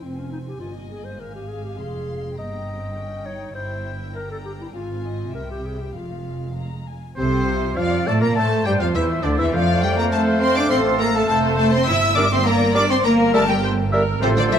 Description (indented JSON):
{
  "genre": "quick classical-period movement for symphony orchestra",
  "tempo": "102 BPM",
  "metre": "2/4",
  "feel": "straight",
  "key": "F minor, F major from 7.2 s",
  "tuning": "A4 = 440 Hz",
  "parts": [
    { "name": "rich chamber violin section", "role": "melody", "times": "0.0-14.6 s", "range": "C5 to E6", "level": "-27 LUFS", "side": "left 5 dB", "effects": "none" },
    { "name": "dark chamber violin section", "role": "second line", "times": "0.0-14.6 s", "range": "C4 to Bb5", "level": "-29 LUFS", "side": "left 1 dB", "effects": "none" },
    { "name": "dark clarinet", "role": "second line", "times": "0.0-14.6 s", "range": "C4 to Eb5", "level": "-29 LUFS", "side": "left 1 dB", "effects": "none" },
    { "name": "rich chamber viola section", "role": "accompaniment", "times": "0.0-14.6 s", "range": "G3 to E5", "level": "-29 LUFS", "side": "left 2 dB", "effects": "none" },
    { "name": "dark chamber cello section", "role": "bass", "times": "0.0-14.6 s", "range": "F2 to E4", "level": "-25 LUFS", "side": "right 2 dB", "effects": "none" },
    { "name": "rich chamber double bass section", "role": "bass", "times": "0.0-14.6 s", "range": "F1 to Bb2", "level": "-25 LUFS", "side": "right 3 dB", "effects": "none" },
    { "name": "bright small flute group", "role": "second line", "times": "7.2-14.6 s", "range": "C5 to E6", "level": "-27 LUFS", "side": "right 3 dB", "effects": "none" },
    { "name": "warm oboe", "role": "second line", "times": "7.2-14.6 s", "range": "C5 to Bb5", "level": "-28 LUFS", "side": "equal", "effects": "none" },
    { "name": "dark bassoon", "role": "accompaniment", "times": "7.2-14.6 s", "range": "C3 to Bb3", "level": "-27 LUFS", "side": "right 1 dB", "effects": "none" },
    { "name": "dark French horn section", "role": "sustained chords", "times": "7.2-14.6 s", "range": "C3 to E4", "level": "-27 LUFS", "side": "left 5 dB", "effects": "none" }
  ],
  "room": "moderate concert hall reverb, RT60 2.1 s",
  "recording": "none",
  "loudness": "-17 LUFS",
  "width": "side -8 dB against mid",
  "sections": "0.0-7.2 A section; 7.2-14.6 A section",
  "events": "none",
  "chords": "0.0 Fm; 1.2 Fm/Ab; 2.4 Gdim; 3.6 Edim/G; 4.7 Fm/Ab; 5.3 C; 5.9 Fm; 7.2 F/C; 8.4 C; 9.5 F; 10.7 F/A; 11.9 Gm; 13.0 Edim/G (rootless)",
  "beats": "| 0.02 0.60 | 1.19 1.78 | 2.38 2.97 | 3.56 4.14 | 4.74 5.34 | 5.95 6.56 | 7.17 7.77 | 8.36 8.95 | 9.53 10.11 | 10.70 11.28 | 11.87 12.46 | 13.05 13.63 | 14.22"
}